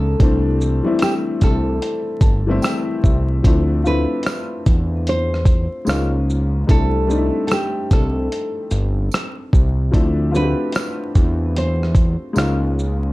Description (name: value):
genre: lo-fi hip hop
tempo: 74 BPM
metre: 4/4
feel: swing 62% on 16ths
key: unclear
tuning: A4 = 441 Hz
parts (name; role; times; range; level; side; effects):
- nylon-string guitar; melody; 0.0-13.1 s; G4 to C5; -24 LUFS; equal; low-pass filter, analog delay
- warm upright piano; accompaniment; 0.0-13.1 s; E3 to A5; -22 LUFS; left 2 dB; cassette tape, low-pass filter
- fat analog bass; bass; 0.0-13.1 s; G1 to E2; -19 LUFS; equal; none
- dusty soul sampler-style drum kit; drums; 0.2-13.0 s; hi-hat, kick drum, rim click, shaker; -17 LUFS; equal; vintage 12-bit sampler grit
- tambourine; percussion; 1.0-12.6 s; none; -39 LUFS; right 8 dB; none
room: light reverb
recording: vinyl crackle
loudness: -16 LUFS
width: side -19 dB against mid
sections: 0.0-13.1 A section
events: none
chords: 0.2 C6; 3.4 Dm9; 5.9 C#6; 6.7 C6; 9.9 Dm9; 12.4 C#6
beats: | 0.20 1.01 1.82 2.63 | 3.44 4.25 5.06 5.87 | 6.68 7.49 8.30 9.11 | 9.93 10.74 11.55 12.36